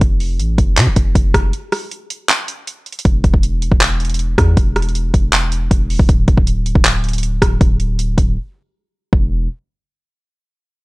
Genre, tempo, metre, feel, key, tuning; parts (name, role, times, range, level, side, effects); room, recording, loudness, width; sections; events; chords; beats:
hip hop, trap; 158 BPM; 4/4; half-time; A4 = 440 Hz
long sustained 808-style bass; bass; 0.0-9.5 s; D1 to C3; -17 LUFS; equal
deep house drum kit; drums; 0.0-9.2 s; handclaps, hi-hat, kick drum, rim click; -14 LUFS; equal; overdrive, vintage 12-bit sampler grit
digital ambience; -13 LUFS; side -22 dB against mid
0.0-3.1 A section; 3.1-9.1 B section; 9.1-10.6 C section
break 1.5-3.1, 8.4-9.1
| 0.01 0.39 0.77 1.15 | 1.53 1.91 2.29 2.67 | 3.05 3.43 3.81 4.19 | 4.57 4.95 5.33 5.71 | 6.09 6.47 6.85 7.23 | 7.61 7.99 8.37 8.75 | 9.13